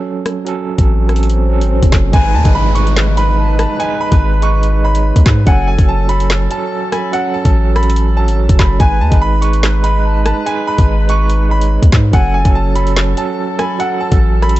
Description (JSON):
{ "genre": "hip hop, drill", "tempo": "144 BPM", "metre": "4/4", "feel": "half-time", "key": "G# phrygian", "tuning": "A4 = 440 Hz", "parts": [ { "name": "overdriven tine electric piano", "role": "accompaniment", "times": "0.0-14.6 s", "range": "F#3 to C#5", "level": "-20 LUFS", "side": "right 7 dB", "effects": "fast tremolo" }, { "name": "swell and downlifter", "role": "sound effects", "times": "0.4-5.5 s", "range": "none", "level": "-25 LUFS", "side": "left 2 dB", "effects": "none" }, { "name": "drill drum kit", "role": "drums", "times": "0.3-14.6 s", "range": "handclaps, hi-hat, kick drum, rim click, snare drum", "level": "-13 LUFS", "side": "equal", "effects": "none" }, { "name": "long sustained 808-style bass", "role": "bass", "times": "0.8-14.6 s", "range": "F#1 to G#2", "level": "-13 LUFS", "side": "equal", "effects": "none" }, { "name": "bright upright piano", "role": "melody", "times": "2.1-14.6 s", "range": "F#5 to C#6", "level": "-20 LUFS", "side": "right 1 dB", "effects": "digital delay" }, { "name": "mellow hollow jazz flute", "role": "second line", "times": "2.1-14.2 s", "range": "G#5 to B5", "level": "-25 LUFS", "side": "left 5 dB", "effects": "digital delay" }, { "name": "warm woodwind section", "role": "sustained chords", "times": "2.1-14.6 s", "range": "F#3 to B4", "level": "-26 LUFS", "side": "left 2 dB", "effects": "none" } ], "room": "small room ambience", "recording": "dark, warm production, nothing above 8.0 kHz", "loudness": "-10 LUFS", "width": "side -16 dB against mid", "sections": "0.0-2.1 A section; 2.1-14.6 B section", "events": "swell 0.4-2.1", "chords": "0.0 F#m; 2.1 G#m; 5.5 F#m; 8.8 G#m; 12.1 F#m" }